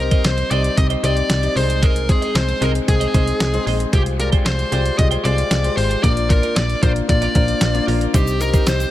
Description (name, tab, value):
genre	1980s-style pop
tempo	114 BPM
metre	4/4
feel	straight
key	C minor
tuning	A4 = 441 Hz
part	fuzz lead guitar	melody	0.0-8.9 s	G4 to Eb5	-22 LUFS	equal	distortion, ping-pong delay
part	warm concert grand piano	accompaniment	0.0-8.9 s	G3 to Eb5	-23 LUFS	left 4 dB	none
part	twelve-string electric guitar	riff	0.0-8.8 s	Eb4 to G5	-29 LUFS	right 8 dB	tube saturation, wide subtle chorus
part	slap-like FM bass	bass	0.0-8.9 s	Ab1 to C2	-20 LUFS	equal	none
part	clean 12-bit digital drum machine	drums	0.1-8.9 s	hi-hat, kick drum, snare drum	-19 LUFS	equal	none
part	tube shaker	percussion	8.1-8.9 s	none	-35 LUFS	left 11 dB	none
room	little or no reverb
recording	none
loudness	-15 LUFS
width	side -14 dB against mid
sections	0.0-8.9 A section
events	none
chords	0.0 Cm; 1.6 Ab/C; 3.9 Fmadd9/C; 6.0 Bb; 8.1 Cm